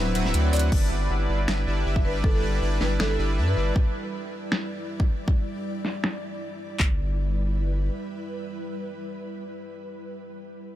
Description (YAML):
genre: future bass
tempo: 158 BPM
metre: 4/4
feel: half-time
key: G major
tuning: A4 = 440 Hz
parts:
  - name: bell-like tine electric piano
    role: accompaniment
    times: 0.0-0.7 s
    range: F#3 to B4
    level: -36 LUFS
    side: left 2 dB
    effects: sidechain pumping, dub echo
  - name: ethereal airy pad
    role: sustained chords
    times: 0.0-10.2 s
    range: G3 to E6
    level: -35 LUFS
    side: equal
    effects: ensemble chorus, built-in reverb, sidechain pumping
  - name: soft supersaw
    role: riff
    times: 0.0-3.7 s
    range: F#3 to F#5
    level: -30 LUFS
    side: right 1 dB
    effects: sidechain pumping, dub echo
  - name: saturated sub bass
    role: bass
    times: 0.0-3.7, 6.8-7.9 s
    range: D1 to G2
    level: -24 LUFS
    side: equal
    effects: sidechain pumping
  - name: pop drum kit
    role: drums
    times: 0.2-6.1 s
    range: crash cymbal, finger snaps, hi-hat, snare drum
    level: -30 LUFS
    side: equal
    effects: overdrive, low-pass filter on hats, low-pass filter on snare, low-pass filter on cymbals, low-pass filter on room
  - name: buzzing marimba with hard mallets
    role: melody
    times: 0.5-3.6 s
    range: A4 to E5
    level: -34 LUFS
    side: equal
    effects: sidechain pumping, dub echo
  - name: pop drum kit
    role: drums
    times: 0.7-6.9 s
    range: handclaps, kick drum, toms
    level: -22 LUFS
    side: equal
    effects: overdrive
room: digital ambience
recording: none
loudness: -23 LUFS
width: side -13 dB against mid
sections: 0.7-6.8 A section; 6.8-9.8 B section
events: kick drops out 0.3-0.7; filter sweep on drum 0.7-6.8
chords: 0.0 D13; 0.7 G6; 3.8 Em7; 6.8 G6